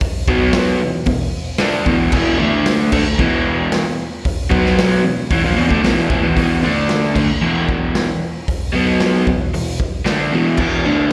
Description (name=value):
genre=garage rock duo or trio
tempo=114 BPM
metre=4/4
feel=straight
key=unclear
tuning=A4 = 442 Hz
part: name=raw garage drum kit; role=drums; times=0.0-10.7 s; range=crash cymbal, hi-hat, kick drum, snare drum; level=-22 LUFS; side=equal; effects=none
part: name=crunchy overdriven guitar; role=riff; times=0.3-11.1 s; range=E2 to D4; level=-18 LUFS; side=equal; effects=slapback echo
room=light reverb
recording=live gig heard through the venue's PA, recital hall reverb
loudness=-17 LUFS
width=mono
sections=0.0-6.4 A section; 6.4-11.1 B section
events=none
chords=0.3 B5; 0.8 E5; 2.4 D5; 2.9 E5; 4.5 B5; 5.0 E5; 6.6 D5; 7.2 E5; 8.7 B5; 9.3 E5